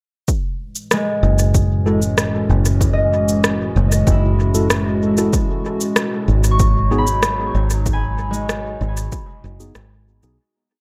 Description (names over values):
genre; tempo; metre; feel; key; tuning
ambient dub; 95 BPM; 4/4; straight; F# dorian; A4 = 440 Hz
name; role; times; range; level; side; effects
warbly tape-like pad; sustained chords; 1.2-10.4 s; A2 to F#4; -25 LUFS; equal; chorus, built-in reverb, phaser
electronic kick drum; drums; 0.3-9.3 s; none; -22 LUFS; equal; overdrive
electronic shaker and rim click; drums; 0.3-10.4 s; none; -24 LUFS; equal; dub echo
concert harp; arpeggios; 0.9-10.4 s; G#3 to C#6; -26 LUFS; equal; dub echo
fingered electric bass; bass; 1.2-10.4 s; F#1 to B1; -20 LUFS; equal; none
mellow tine electric piano; stabs; 1.9-10.4 s; G#3 to A4; -27 LUFS; equal; phaser, dub echo
room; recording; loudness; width
light reverb, digital ambience; none; -18 LUFS; mono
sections
0.3-10.4 groove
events
fade-out 7.0-10.4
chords
0.3 F#m9; 5.3 G#m7